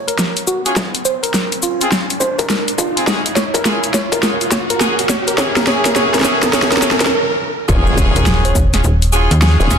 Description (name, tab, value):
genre	glitch hop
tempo	104 BPM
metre	4/4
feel	swing 63% on 16ths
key	Eb dorian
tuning	A4 = 440 Hz
part	woody wave-folded pluck	melody	0.0-8.6 s	F4 to Db5	-20 LUFS	right 2 dB	chorus, digital delay
part	riser and impact	sound effects	0.0-9.8 s	none	-22 LUFS	equal	none
part	dubstep drum kit	drums	0.1-9.8 s	hi-hat, shaker, snare drum	-17 LUFS	equal	none
part	clear horn section	stabs	0.7-9.8 s	C4 to Ab4	-20 LUFS	equal	sidechain pumping, digital delay
part	electronic kick drum	drums	0.8-8.7 s	none	-20 LUFS	equal	distortion, high-pass filter on kick
part	formant-sweep wobble bass	bass	7.7-9.7 s	Eb1	-16 LUFS	equal	chorus, overdrive
part	slap-like FM bass	bass	8.2-9.8 s	Eb1 to Eb2	-13 LUFS	equal	none
room	moderate plate reverb, RT60 1.5 s, digital ambience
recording	dense, heavily limited modern master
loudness	-13 LUFS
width	side -7 dB against mid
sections	0.0-7.7 A section; 7.7-9.8 B section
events	build-up 0.0-7.7; drum fill 0.0-7.1; riser 0.0-7.1; stop 7.1-7.7; drop 7.7-9.8; impact 7.7-9.8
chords	0.0 Dbadd11; 0.8 Fm; 3.1 Gb5; 5.4 Eadd9; 7.7 Ebm11